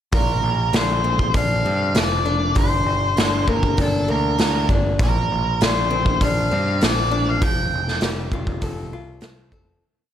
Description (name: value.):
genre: quiet-loud alternative rock.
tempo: 99 BPM.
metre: 4/4.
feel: straight.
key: unclear.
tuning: A4 = 435 Hz.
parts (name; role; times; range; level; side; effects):
octave-fuzz lead guitar; melody; 0.1-8.0 s; A4 to G5; -23 LUFS; equal; distortion, plate reverb.
picked old ladder-braced acoustic guitar; arpeggios; 0.1-9.8 s; G2 to A4; -26 LUFS; left 3 dB; plate reverb, analog delay.
growling picked electric bass; bass; 0.1-9.8 s; F1 to G2; -24 LUFS; equal; overdrive.
raw garage drum kit; drums; 0.1-9.7 s; hi-hat, kick drum, snare drum; -22 LUFS; equal; none.
room: light reverb.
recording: none.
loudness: -17 LUFS.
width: side -10 dB against mid.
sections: 0.1-9.8 verse.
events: fade-out 7.4-9.8.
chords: 0.1 Bbadd9; 2.6 Gm; 5.0 Bbadd9; 7.4 Fadd9.